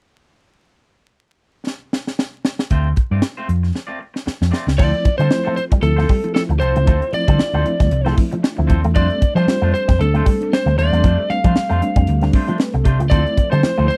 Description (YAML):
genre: funk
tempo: 115 BPM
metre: 4/4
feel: swing 56% on 16ths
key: D minor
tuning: A4 = 440 Hz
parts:
  - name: crisp fusion drum kit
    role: drums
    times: 1.7-14.0 s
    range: crash cymbal, hi-hat, kick drum, snare drum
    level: -19 LUFS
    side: equal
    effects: none
  - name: clean electric guitar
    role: accompaniment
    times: 2.7-13.9 s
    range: A3 to D5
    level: -31 LUFS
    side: equal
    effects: none
  - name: hollow-body short-scale picked electric bass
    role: bass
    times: 2.7-13.9 s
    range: C2 to F3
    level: -19 LUFS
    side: equal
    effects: none
  - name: lightly driven lead guitar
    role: melody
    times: 4.8-14.0 s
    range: A4 to F5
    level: -23 LUFS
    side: equal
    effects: none
  - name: string machine, violins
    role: sustained chords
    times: 4.8-14.0 s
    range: F3 to E4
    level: -31 LUFS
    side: equal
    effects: none
  - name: electric guitar with an envelope filter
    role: riff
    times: 4.8-13.9 s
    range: F3 to A3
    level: -27 LUFS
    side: equal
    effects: ensemble chorus
  - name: mellow reed electric piano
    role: stabs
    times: 4.8-13.9 s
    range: F3 to B4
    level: -26 LUFS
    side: equal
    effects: fast tremolo
room: little or no reverb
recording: dry, close 1970s-style studio recording, vinyl crackle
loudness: -17 LUFS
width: mono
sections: 0.6-2.7 A section; 2.7-4.8 B section; 4.8-14.0 C section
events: drum fill 1.7-2.7, 3.8-4.8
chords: 0.6 N.C.; 2.7 Dm7